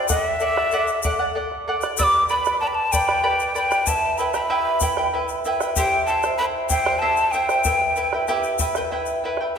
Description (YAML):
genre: andean folk, Andean ensemble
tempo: 95 BPM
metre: 3/4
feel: straight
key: E minor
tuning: A4 = 440 Hz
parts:
  - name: breathy hollow quena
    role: melody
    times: 0.0-9.6 s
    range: E5 to E6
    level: -21 LUFS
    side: equal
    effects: none
  - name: charango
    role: accompaniment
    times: 0.0-9.6 s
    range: E4 to B5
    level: -23 LUFS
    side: right 1 dB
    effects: none
  - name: bombo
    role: percussion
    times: 0.1-9.5 s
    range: none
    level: -29 LUFS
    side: right 1 dB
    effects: none
  - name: tube shaker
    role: percussion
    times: 0.1-9.1 s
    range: none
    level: -30 LUFS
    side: left 8 dB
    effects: none
room: wet concert hall reverb, RT60 2.2 s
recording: minimal, uncompressed stereo recording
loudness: -18 LUFS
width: side -7 dB against mid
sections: 0.0-9.5 A section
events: none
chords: 0.1 D; 2.0 G; 3.9 Em; 5.8 C; 7.6 Em